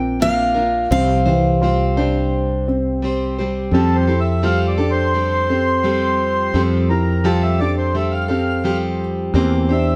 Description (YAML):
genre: acoustic folk duo or small band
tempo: 85 BPM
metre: 4/4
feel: straight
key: F major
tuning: A4 = 440 Hz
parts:
  - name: picked steel-string acoustic guitar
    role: melody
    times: 0.0-3.0 s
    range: F5 to G5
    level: -22 LUFS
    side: equal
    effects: none
  - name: picked plugged-in steel-string acoustic guitar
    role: accompaniment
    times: 0.0-10.0 s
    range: C3 to C5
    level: -24 LUFS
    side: equal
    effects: none
  - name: felt-muted upright piano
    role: arpeggios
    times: 0.0-10.0 s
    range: E3 to F4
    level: -24 LUFS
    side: equal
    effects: none
  - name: mellow fretless electric bass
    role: bass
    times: 0.0-10.0 s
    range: Bb1 to F2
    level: -23 LUFS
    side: equal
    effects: none
  - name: mellow accordion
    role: second line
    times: 3.7-10.0 s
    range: A4 to F5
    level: -23 LUFS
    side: equal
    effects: none
room: light reverb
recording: none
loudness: -18 LUFS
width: mono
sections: 0.0-3.7 A section; 3.7-10.0 B section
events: accordion solo 3.7-10.0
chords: 0.0 Bb; 0.9 Csus4; 3.7 Fadd9; 9.3 C7/E